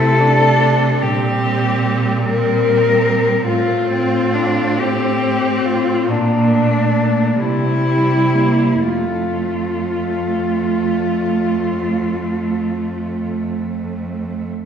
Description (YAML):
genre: classical, lyrical piece for cello ensemble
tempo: 39-49 BPM (dotted quarters)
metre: 12/8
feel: rubato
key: F major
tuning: A4 = 440 Hz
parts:
  - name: rich cello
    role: melody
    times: 0.0-13.3 s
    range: D4 to Bb4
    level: -18 LUFS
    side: left 3 dB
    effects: none
  - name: rich cello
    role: second line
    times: 0.0-14.5 s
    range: G3 to E4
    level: -22 LUFS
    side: right 5 dB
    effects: none
  - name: clear cello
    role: accompaniment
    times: 0.0-14.0 s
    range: G3 to D4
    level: -22 LUFS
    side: left 1 dB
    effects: none
  - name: rich cello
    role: bass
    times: 0.0-14.5 s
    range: F2 to C3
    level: -20 LUFS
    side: right 1 dB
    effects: none
room: wet scoring stage reverb, RT60 1.6 s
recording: heard from further back in the room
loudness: -15 LUFS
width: side -8 dB against mid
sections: 0.0-14.7 A section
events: none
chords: 0.0 C; 1.0 C5/Bb; 3.5 F/A; 6.1 Bb; 7.4 C; 8.8 F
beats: 1.02 2.25 | 3.49 4.79 6.08 7.40 | 8.82 10.35 11.84 13.30